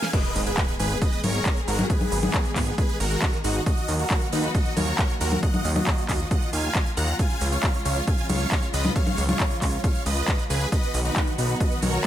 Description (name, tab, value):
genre	uplifting trance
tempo	136 BPM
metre	4/4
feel	straight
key	unclear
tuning	A4 = 438 Hz
part	big supersaw lead	melody	0.0-12.1 s	Cb4 to Bb5	-28 LUFS	right 1 dB	phaser, sidechain pumping, tape echo
part	big-room dance drum kit	drums	0.0-12.1 s	congas, crash cymbal, handclaps, hi-hat, shaker, snare drum	-28 LUFS	left 1 dB	none
part	swell and impact	sound effects	0.0-1.9 s	none	-37 LUFS	equal	none
part	dark chamber string section	sustained chords	0.1-12.1 s	Db3 to Ab4	-32 LUFS	left 2 dB	sidechain pumping
part	electronic kick drum	drums	0.1-12.1 s	none	-24 LUFS	equal	none
part	fat analog bass	bass	0.4-12.0 s	Ab1 to Eb2	-26 LUFS	equal	sidechain pumping
room	digital ambience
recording	none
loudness	-21 LUFS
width	side -12 dB against mid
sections	0.1-12.1 A section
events	drop 0.1-12.1; impact 0.1-1.9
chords	0.1 Abm; 3.7 Ebm; 7.2 Db; 10.7 B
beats	| 0.13 0.57 1.02 1.46 | 1.90 2.34 2.78 3.22 | 3.66 4.10 4.54 4.99 | 5.43 5.87 6.31 6.75 | 7.19 7.63 8.07 8.52 | 8.96 9.40 9.84 10.28 | 10.72 11.16 11.60 12.04